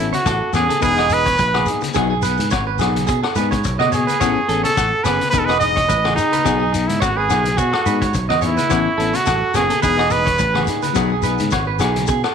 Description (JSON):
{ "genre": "highlife guitar band", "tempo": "107 BPM", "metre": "4/4", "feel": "swing 54% on 16ths", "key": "unclear", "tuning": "A4 = 439 Hz", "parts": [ { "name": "bright trumpet", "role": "melody", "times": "0.0-10.7 s", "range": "D#4 to D#5", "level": "-19 LUFS", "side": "right 1 dB", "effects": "slapback echo" }, { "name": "semi-hollow electric guitar", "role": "accompaniment", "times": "0.0-12.0 s", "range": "E3 to A4", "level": "-24 LUFS", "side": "left 12 dB", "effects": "spring reverb" }, { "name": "fingered electric bass", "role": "bass", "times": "0.0-12.2 s", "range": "E1 to B2", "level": "-23 LUFS", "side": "equal", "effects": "none" }, { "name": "clean electric guitar", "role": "arpeggios", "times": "0.1-12.3 s", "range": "G#4 to D#5", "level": "-22 LUFS", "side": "right 12 dB", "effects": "slapback echo" }, { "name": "vintage drum kit", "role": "drums", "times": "0.1-12.3 s", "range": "hi-hat, kick drum, rim click", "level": "-24 LUFS", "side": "left 3 dB", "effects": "none" }, { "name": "congas", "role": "percussion", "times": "0.1-12.1 s", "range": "none", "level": "-31 LUFS", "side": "left 9 dB", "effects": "none" }, { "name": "shekere", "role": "percussion", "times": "0.1-12.2 s", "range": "none", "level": "-28 LUFS", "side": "left 4 dB", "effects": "none" }, { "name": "agogo bells", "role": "percussion", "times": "0.3-12.3 s", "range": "none", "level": "-28 LUFS", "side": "left 12 dB", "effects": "none" } ], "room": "moderate plate reverb, RT60 1.7 s", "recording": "1960s-style stereo with parts hard left and right", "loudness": "-15 LUFS", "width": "side -7 dB against mid", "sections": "0.0-12.3 A section", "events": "none", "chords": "0.0 Aadd9; 0.8 Emaj7; 1.9 B6; 4.2 Aadd9; 5.3 Emaj7; 6.5 B6; 8.7 Aadd9; 9.8 Emaj7; 11.0 B6", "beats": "0.25 0.82 1.38 | 1.95 2.51 3.08 3.64 | 4.20 4.76 5.33 5.89 | 6.45 7.02 7.58 8.14 | 8.71 9.27 9.83 10.40 | 10.96 11.52 12.09" }